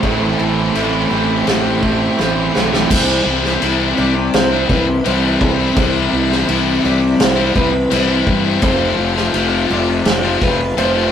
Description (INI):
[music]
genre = rock, shoegaze and dream pop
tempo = 84 BPM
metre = 4/4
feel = straight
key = C major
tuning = A4 = 440 Hz
[part]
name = string machine, full ensemble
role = sustained chords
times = 0.0-11.1 s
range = C4 to C6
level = -22 LUFS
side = equal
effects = ensemble chorus
[part]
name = picked twelve-string acoustic guitar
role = arpeggios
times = 0.0-11.1 s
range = E4 to E5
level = -23 LUFS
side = right 2 dB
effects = none
[part]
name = biting overdriven guitar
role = riff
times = 0.0-11.1 s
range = F2 to F4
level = -19 LUFS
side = left 6 dB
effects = none
[part]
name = cranked stack guitar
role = riff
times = 0.0-2.9 s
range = A2 to A3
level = -26 LUFS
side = left 2 dB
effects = none
[part]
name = crunchy overdriven guitar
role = riff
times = 0.0-2.9 s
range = A2 to E4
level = -18 LUFS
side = right 5 dB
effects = none
[part]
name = fuzz fingered electric bass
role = bass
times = 0.0-11.1 s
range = F1 to G2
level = -20 LUFS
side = equal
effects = overdrive
[part]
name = loose indie drum kit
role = drums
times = 0.0-10.9 s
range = crash cymbal, kick drum, snare drum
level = -19 LUFS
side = equal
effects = none
[sound]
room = wet studio reverb, RT60 0.5 s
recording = rough rehearsal-room recording, tube saturation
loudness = -13 LUFS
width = side -9 dB against mid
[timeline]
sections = 0.0-2.9 A section; 2.9-11.1 B section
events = drum fill 2.2-2.9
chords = 0.0 Am7; 2.9 Cmaj7; 8.6 Fmaj7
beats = | 0.03 0.75 1.47 2.19 | 2.91 3.62 4.34 5.06 | 5.77 6.49 7.20 7.92 | 8.63 9.35 10.06 10.78